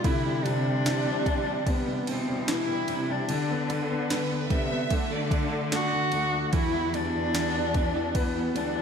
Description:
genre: pop ballad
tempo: 74 BPM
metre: 4/4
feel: straight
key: unclear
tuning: A4 = 443 Hz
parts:
  - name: dark cello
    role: melody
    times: 0.0-8.8 s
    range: B3 to F#4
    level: -29 LUFS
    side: equal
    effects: slapback echo, digital delay
  - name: clear concert grand piano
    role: accompaniment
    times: 0.0-8.8 s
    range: C3 to B4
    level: -31 LUFS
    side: left 5 dB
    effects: slapback echo
  - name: picked steel-string acoustic guitar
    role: arpeggios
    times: 0.0-8.8 s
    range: C3 to A4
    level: -36 LUFS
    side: right 10 dB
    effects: none
  - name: rich studio cello section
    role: bass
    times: 0.0-8.8 s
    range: D2 to D3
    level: -32 LUFS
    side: equal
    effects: none
  - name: smooth R&B drum kit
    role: drums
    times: 0.0-8.7 s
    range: kick drum, ride cymbal, snare drum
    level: -31 LUFS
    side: equal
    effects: overdrive
  - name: warm studio violin section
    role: second line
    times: 4.1-5.5 s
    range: B4 to E5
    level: -34 LUFS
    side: right 3 dB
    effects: slapback echo
room: moderate lush hall reverb, RT60 2.8 s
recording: big arena sound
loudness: -24 LUFS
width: side -7 dB against mid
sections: 0.0-8.8 A section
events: none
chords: 0.0 Cadd9; 3.3 G/D; 4.9 D; 6.5 Emadd9

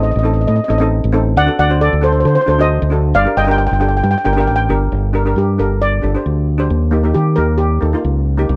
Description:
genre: calypso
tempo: 135 BPM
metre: 4/4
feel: swing 54% on 16ths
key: G minor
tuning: A4 = 440 Hz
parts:
  - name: steel pan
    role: melody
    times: 0.0-8.0 s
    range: G4 to G5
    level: -19 LUFS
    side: equal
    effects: none
  - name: steel pan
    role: accompaniment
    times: 0.0-8.5 s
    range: Bb3 to C5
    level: -22 LUFS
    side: equal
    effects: none
  - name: fingered electric bass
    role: bass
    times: 0.0-8.6 s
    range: G1 to Eb3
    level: -17 LUFS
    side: equal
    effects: none
room: small room ambience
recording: dry, close 1970s-style studio recording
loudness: -15 LUFS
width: mono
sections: 0.0-4.9 A section; 4.9-8.6 B section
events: steel pan solo 4.9-8.6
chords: 0.0 Adim; 1.4 D7; 3.1 Gm; 6.7 Eb

